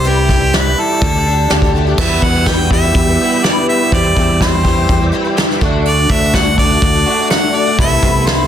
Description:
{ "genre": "folk rock and heartland rock", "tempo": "124 BPM", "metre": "4/4", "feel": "straight", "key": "unclear", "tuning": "A4 = 440 Hz", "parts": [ { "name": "bright harmonica", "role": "melody", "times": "0.0-8.5 s", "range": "G4 to G5", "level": "-16 LUFS", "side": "equal", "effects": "none" }, { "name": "picked twelve-string acoustic guitar", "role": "accompaniment", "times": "0.0-8.5 s", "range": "E2 to G4", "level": "-21 LUFS", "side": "left 5 dB", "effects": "ensemble chorus" }, { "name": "electric guitar through a small old amp", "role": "riff", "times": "0.0-8.5 s", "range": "E2 to G4", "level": "-19 LUFS", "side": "right 1 dB", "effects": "spring reverb" }, { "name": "fingered electric bass", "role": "bass", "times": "0.0-8.5 s", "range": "C2 to E2", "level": "-16 LUFS", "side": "equal", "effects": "none" }, { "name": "soft brush drum kit", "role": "drums", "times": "0.0-8.4 s", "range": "crash cymbal, hi-hat, kick drum, snare drum", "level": "-16 LUFS", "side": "equal", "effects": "none" }, { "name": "warm upright piano", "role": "accompaniment", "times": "2.0-8.5 s", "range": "D4 to B5", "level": "-29 LUFS", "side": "right 4 dB", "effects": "none" }, { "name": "tonewheel organ", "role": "sustained chords", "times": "2.0-8.5 s", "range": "A4 to E6", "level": "-28 LUFS", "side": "right 1 dB", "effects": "chorus vibrato, fast rotary speaker" } ], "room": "light reverb, small room ambience", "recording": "dense, heavily limited modern master", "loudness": "-10 LUFS", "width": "side -9 dB against mid", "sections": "0.0-2.0 A section; 2.0-8.5 B section", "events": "none", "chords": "0.0 C; 1.0 Dsus4; 2.0 Em; 3.9 C/E; 5.6 D; 7.8 Amadd9/C" }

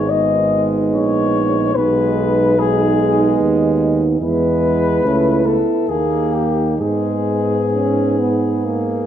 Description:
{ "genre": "classical, hymn-like piece for brass band", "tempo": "64-74 BPM", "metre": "3/4", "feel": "rubato", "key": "G# minor", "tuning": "A4 = 440 Hz", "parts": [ { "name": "mellow flugelhorn", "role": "melody", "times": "0.0-9.1 s", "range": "G4 to D#5", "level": "-20 LUFS", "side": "left 6 dB", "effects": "none" }, { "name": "dark French horn section", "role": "second line", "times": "0.0-9.1 s", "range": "D#4 to E4", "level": "-21 LUFS", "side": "right 8 dB", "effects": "none" }, { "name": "clear trombone", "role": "accompaniment", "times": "0.0-9.1 s", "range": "G#3 to C#4", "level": "-22 LUFS", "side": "right 2 dB", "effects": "none" }, { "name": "mellow euphonium", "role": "accompaniment", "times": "0.0-9.1 s", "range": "A#3 to C#4", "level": "-22 LUFS", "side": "left 1 dB", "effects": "none" }, { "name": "clear tuba", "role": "bass", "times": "0.0-9.1 s", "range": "G#1 to G#2", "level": "-21 LUFS", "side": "equal", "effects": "none" } ], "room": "moderate recital hall reverb, RT60 1.5 s", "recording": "none", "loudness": "-14 LUFS", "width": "side -10 dB against mid", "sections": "0.0-9.1 A section", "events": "none", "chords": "0.0 G#m; 1.8 G#m/B; 4.2 E; 5.0 A/C#; 5.9 D#; 6.8 G#m" }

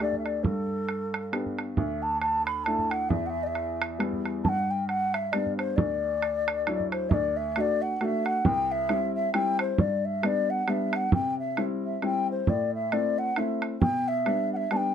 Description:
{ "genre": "celtic folk, Celtic waltz", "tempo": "135 BPM", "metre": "3/4", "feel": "swing 57% on 8ths", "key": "D mixolydian", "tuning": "A4 = 444 Hz", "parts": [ { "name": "mellow hollow wooden flute", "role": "melody", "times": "0.0-14.9 s", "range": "A4 to B5", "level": "-28 LUFS", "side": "left 2 dB", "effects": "none" }, { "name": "warm upright piano", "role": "accompaniment", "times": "0.0-14.9 s", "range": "C2 to G4", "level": "-30 LUFS", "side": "left 1 dB", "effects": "none" }, { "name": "bodhran", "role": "percussion", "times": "0.0-14.8 s", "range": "none", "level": "-27 LUFS", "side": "right 3 dB", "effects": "none" } ], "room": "light reverb", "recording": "none", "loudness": "-25 LUFS", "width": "side -8 dB against mid", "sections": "0.0-7.1 A section; 7.1-14.9 B section", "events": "none", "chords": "0.4 G; 1.8 Dsus2; 3.1 Em; 4.4 G; 5.8 Dadd9; 7.1 D; 8.5 C; 9.8 G; 11.1 C; 12.5 Am; 13.8 G/B" }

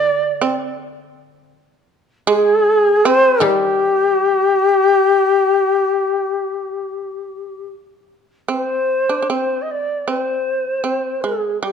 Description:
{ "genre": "japanese traditional, Japanese chamber music", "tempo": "78 BPM", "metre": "4/4", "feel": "rubato", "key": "unclear", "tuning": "A4 = 440 Hz", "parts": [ { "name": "reedy long shakuhachi", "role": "melody", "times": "0.0-11.7 s", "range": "G4 to Eb5", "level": "-15 LUFS", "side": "left 2 dB", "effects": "none" }, { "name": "shamisen", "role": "second line", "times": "0.0-11.7 s", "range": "G3 to D4", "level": "-21 LUFS", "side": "right 5 dB", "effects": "none" }, { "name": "koto", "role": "accompaniment", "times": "0.0-5.7 s", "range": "D3 to G3", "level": "-26 LUFS", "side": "left 5 dB", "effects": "none" } ], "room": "light reverb", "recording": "dark, warm production", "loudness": "-14 LUFS", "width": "side -7 dB against mid", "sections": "0.0-8.5 A section; 8.5-11.7 B section", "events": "none", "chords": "none" }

